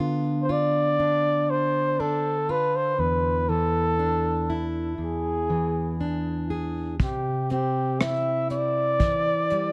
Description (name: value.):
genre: acoustic folk-pop ballad.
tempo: 60 BPM.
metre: 4/4.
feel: straight.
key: unclear.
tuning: A4 = 441 Hz.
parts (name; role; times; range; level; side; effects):
fingerpicked plugged-in steel-string acoustic guitar; accompaniment; 0.0-9.7 s; E2 to G#4; -29 LUFS; equal; none.
breathy flugelhorn; melody; 0.4-9.7 s; G4 to E5; -27 LUFS; equal; tape echo.
vintage brush drum kit; drums; 7.0-9.7 s; hi-hat, kick drum, rim click; -29 LUFS; equal; none.
room: light reverb.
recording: close, detailed microphones, faint mains hum.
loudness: -25 LUFS.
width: mono.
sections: 0.0-7.0 A section; 7.0-9.7 B section.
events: none.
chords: 0.0 Bdim/D; 3.0 E7sus4; 5.0 E7; 7.0 C.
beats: 0.98 1.98 | 2.98 3.98 4.99 5.99 | 7.00 8.00 9.00.